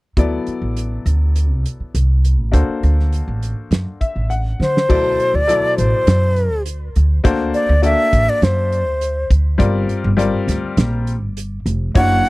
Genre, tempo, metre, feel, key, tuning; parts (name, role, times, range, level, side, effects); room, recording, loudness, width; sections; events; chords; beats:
electric jazz fusion; 102 BPM; 4/4; straight; D mixolydian; A4 = 439 Hz
clear grand piano; accompaniment; 0.2-12.3 s; B2 to F#5; -21 LUFS; left 4 dB
upright bass; bass; 0.2-12.2 s; F1 to D3; -17 LUFS; equal
damped 70s drum kit; drums; 0.2-12.3 s; crash cymbal, hi-hat, kick drum, snare drum; -18 LUFS; right 1 dB
breathy bright concert flute; melody; 4.6-12.3 s; C5 to F#5; -17 LUFS; equal
little or no reverb; dry, close 1970s-style studio recording; -15 LUFS; side -20 dB against mid
0.2-4.9 A section; 4.9-12.3 B section
grand piano fill 3.7-4.9; drum fill 4.6
0.2 D9; 2.5 D7b13; 4.9 D9; 7.2 D7b13; 9.6 Gm7
| 0.17 0.76 1.35 1.94 | 2.53 3.12 3.71 4.30 | 4.89 5.48 6.07 6.66 | 7.25 7.83 8.42 9.01 | 9.60 10.19 10.78 11.37 | 11.96